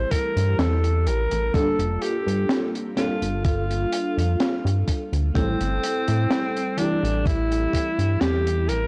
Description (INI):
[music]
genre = vaporwave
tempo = 63 BPM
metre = 4/4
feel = swing 53% on 16ths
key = unclear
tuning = A4 = 439 Hz
[part]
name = clear alto saxophone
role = melody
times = 0.0-8.9 s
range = C4 to C5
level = -29 LUFS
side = equal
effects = tape echo
[part]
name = FM electric piano with soft pad layer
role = accompaniment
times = 0.0-8.9 s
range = E3 to A4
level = -30 LUFS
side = equal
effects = ensemble chorus
[part]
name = chorused synth bass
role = bass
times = 0.0-8.9 s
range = F1 to A2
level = -25 LUFS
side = equal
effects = none
[part]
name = crunchy breakbeat drum kit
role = drums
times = 0.1-8.9 s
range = hi-hat, snare drum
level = -30 LUFS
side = equal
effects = none
[part]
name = electronic kick drum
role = drums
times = 0.1-7.9 s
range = none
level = -26 LUFS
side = equal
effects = none
[sound]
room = small room ambience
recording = dry, gritty hardware recording, transformer saturation, cassette tape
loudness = -23 LUFS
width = mono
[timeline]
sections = 0.0-8.9 A section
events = none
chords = 0.0 Am7; 1.5 Gm9; 5.4 Am7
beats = 0.59 | 1.54 2.50 3.45 4.40 | 5.35 6.31 7.26 8.21